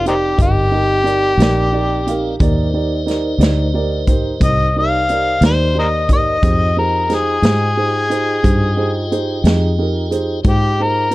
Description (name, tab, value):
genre	slow blues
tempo	60 BPM (dotted quarters)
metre	12/8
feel	straight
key	C minor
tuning	A4 = 439 Hz
part	warm harmonica	melody	0.0-11.1 s	C4 to F5	-17 LUFS	left 2 dB	overdrive
part	tonewheel organ	sustained chords	0.0-11.1 s	C4 to G5	-26 LUFS	equal	slow rotary speaker, overdrive
part	fingered electric bass	bass	0.0-11.1 s	F1 to Ab2	-18 LUFS	equal	none
part	dark grand piano	accompaniment	0.1-11.1 s	Eb4 to F5	-21 LUFS	right 4 dB	none
part	natural country drum kit	drums	0.1-11.1 s	hi-hat, kick drum, snare drum	-17 LUFS	equal	none
room	little or no reverb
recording	cassette tape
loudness	-13 LUFS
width	side -18 dB against mid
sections	0.0-11.1 A section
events	harmonica solo 0.0-11.1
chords	0.0 Cm9; 6.4 Fm9